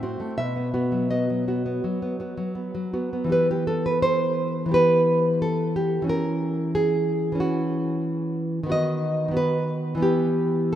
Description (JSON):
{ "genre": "romantic piece for solo classical guitar", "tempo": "78-94 BPM", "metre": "4/4", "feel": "rubato", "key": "E minor", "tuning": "A4 = 440 Hz", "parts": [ { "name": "nylon-string guitar", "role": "solo", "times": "0.0-10.8 s", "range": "A2 to E5", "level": "-21 LUFS", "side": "equal", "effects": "none" } ], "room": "wet lush hall reverb, RT60 3.0 s", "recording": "rough home demo mix", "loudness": "-21 LUFS", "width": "side -11 dB against mid", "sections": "0.0-3.3 A section; 3.3-10.8 B section", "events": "none", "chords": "0.4 B; 3.3 Em; 6.1 F#7/E; 8.7 B/D#; 10.0 Em" }